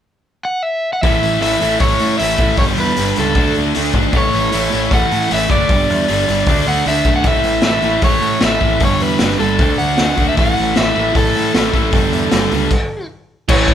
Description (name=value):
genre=punk rock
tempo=154 BPM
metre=4/4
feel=straight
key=A mixolydian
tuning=A4 = 439 Hz
part: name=overdriven electric guitar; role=melody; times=0.4-13.7 s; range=A4 to F#5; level=-18 LUFS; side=equal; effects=none
part: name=biting overdriven guitar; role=riff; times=1.0-13.7 s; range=G2 to D4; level=-20 LUFS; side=left 9 dB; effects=none
part: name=crunchy overdriven guitar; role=riff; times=1.0-13.7 s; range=G2 to D4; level=-20 LUFS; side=right 7 dB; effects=none
part: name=growling picked electric bass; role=bass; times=1.0-13.7 s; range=F#1 to A2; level=-22 LUFS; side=equal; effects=overdrive
part: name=raw garage drum kit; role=drums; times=1.0-13.7 s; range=crash cymbal, hi-hat, kick drum, snare drum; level=-17 LUFS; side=equal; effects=none
room=light reverb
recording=band playing live in one room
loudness=-13 LUFS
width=side -9 dB against mid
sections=0.0-1.0 A section; 1.0-13.5 B section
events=stop 12.7-13.5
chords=0.0 N.C.; 1.0 A; 2.6 G; 3.4 D5; 4.1 A; 5.7 G5; 6.5 D5; 7.3 A; 8.8 G; 9.6 D; 10.4 A5; 11.9 G5; 12.7 N.C.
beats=0.25 0.64 | 1.02 1.41 1.80 2.19 | 2.58 2.97 3.35 3.74 | 4.13 4.52 4.91 5.30 | 5.69 6.08 6.47 6.86 | 7.25 7.64 8.03 8.42 | 8.81 9.20 9.59 9.98 | 10.37 10.76 11.15 11.54 | 11.93 12.32 12.71 13.09 | 13.48